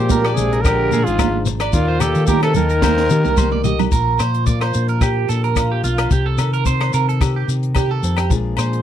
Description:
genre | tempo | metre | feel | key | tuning
highlife guitar band | 110 BPM | 4/4 | straight | Bb major | A4 = 440 Hz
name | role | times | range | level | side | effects
growling trumpet | melody | 0.0-3.6 s | F4 to Bb4 | -20 LUFS | equal | none
raspy tenor saxophone | second line | 0.0-3.6 s | Ab2 to Eb3 | -26 LUFS | left 8 dB | none
fingerpicked steel-string acoustic guitar | accompaniment | 0.0-8.8 s | Bb2 to Ab4 | -26 LUFS | left 6 dB | none
electric guitar at the edge of break-up | arpeggios | 0.0-8.8 s | F4 to Eb5 | -23 LUFS | right 9 dB | phaser, slapback echo
hollow-body short-scale fingered electric bass | bass | 0.0-8.8 s | Ab1 to Eb3 | -19 LUFS | equal | none
compact cocktail drum kit | drums | 0.1-8.8 s | hi-hat, kick drum, rim click, snare drum, toms | -20 LUFS | equal | none
congas | percussion | 0.1-3.9 s | none | -24 LUFS | right 15 dB | none
shekere | percussion | 0.1-8.7 s | none | -25 LUFS | left 7 dB | none
agogo bells | percussion | 0.2-8.7 s | none | -29 LUFS | left 17 dB | none
room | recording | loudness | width
little or no reverb | dry, close 1970s-style studio recording | -15 LUFS | side -10 dB against mid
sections
0.0-3.9 A section; 3.9-8.8 B section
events
drum fill 2.8-3.9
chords
0.0 Bb7; 1.7 Eb; 3.9 Bb; 6.1 Cm; 8.3 Bb7

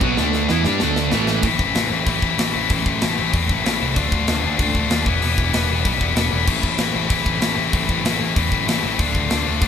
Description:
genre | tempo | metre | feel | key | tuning
punk rock | 191 BPM | 4/4 | straight | A minor | A4 = 439 Hz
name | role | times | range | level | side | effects
sludgy distorted guitar | riff | 0.0-1.4 s | A2 to G4 | -21 LUFS | right 7 dB | overdrive
tight distorted guitar | riff | 0.0-9.7 s | A2 to G4 | -20 LUFS | left 7 dB | distortion
fuzz picked electric bass | bass | 0.0-9.7 s | E1 to G2 | -24 LUFS | equal | overdrive
tight metal drum kit | drums | 0.0-9.7 s | crash cymbal, hi-hat, kick drum, snare drum | -22 LUFS | equal | none
room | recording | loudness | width
light reverb | band playing live in one room | -17 LUFS | side -8 dB against mid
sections
0.0-1.4 A section; 1.4-9.7 B section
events
drum fill 0.2-1.4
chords
0.2 D5; 0.5 Em7; 0.8 D5; 1.1 A5; 1.4 Am; 4.0 Dm; 5.1 Em; 6.5 Am; 9.0 Dm

